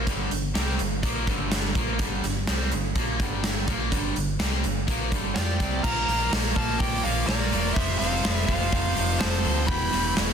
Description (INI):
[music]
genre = hard rock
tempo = 125 BPM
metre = 4/4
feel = straight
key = unclear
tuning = A4 = 438 Hz
[part]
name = crunchy overdriven guitar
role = riff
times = 0.0-10.3 s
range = E2 to F4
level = -31 LUFS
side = left 15 dB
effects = none
[part]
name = crunchy overdriven guitar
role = riff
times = 0.0-10.3 s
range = E2 to F4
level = -32 LUFS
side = right 13 dB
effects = phaser
[part]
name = fingered electric bass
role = bass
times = 0.0-10.3 s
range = E1 to F2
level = -29 LUFS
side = equal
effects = none
[part]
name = big rock drum kit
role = drums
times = 0.1-10.3 s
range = crash cymbal, hi-hat, kick drum, snare drum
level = -27 LUFS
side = equal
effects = soft clipping on kick
[part]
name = nasal lead guitar with a parked wah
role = melody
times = 5.3-10.1 s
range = C5 to B5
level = -29 LUFS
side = left 1 dB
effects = overdrive, analog delay
[part]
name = octave-fuzz lead guitar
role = second line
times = 5.3-10.1 s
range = G4 to G5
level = -35 LUFS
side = right 5 dB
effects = distortion
[sound]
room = studio reverb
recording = dense, heavily limited modern master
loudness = -22 LUFS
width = side -7 dB against mid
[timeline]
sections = 0.0-5.8 A section; 5.8-10.3 B section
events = none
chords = 0.0 G5; 5.8 Bb; 7.8 F; 9.7 Em